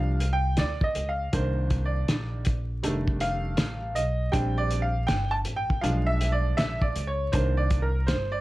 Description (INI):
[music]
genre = hip hop, jazz-hop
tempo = 80 BPM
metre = 4/4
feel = swing 64% on 16ths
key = unclear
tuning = A4 = 440 Hz
[part]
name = clear grand piano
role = accompaniment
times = 0.0-8.4 s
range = Eb3 to A5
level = -29 LUFS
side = right 1 dB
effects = plate reverb
[part]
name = upright bass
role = bass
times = 0.0-8.4 s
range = F1 to D2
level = -27 LUFS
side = equal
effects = none
[part]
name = cloth-damped thuddy drum kit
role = drums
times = 0.2-8.3 s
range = hi-hat, kick drum, snare drum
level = -27 LUFS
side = equal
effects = none
[sound]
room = light reverb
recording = dark, warm production, vinyl crackle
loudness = -24 LUFS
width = side -18 dB against mid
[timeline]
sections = 0.0-8.4 A section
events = grand piano solo 0.0-8.4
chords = 0.0 Ebmaj9; 1.3 Cm7; 2.8 F13; 4.3 Bb69; 5.8 Bdim7; 7.3 Cm9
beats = 0.58 | 1.33 2.08 2.83 3.58 | 4.33 5.08 5.83 6.58 | 7.33 8.08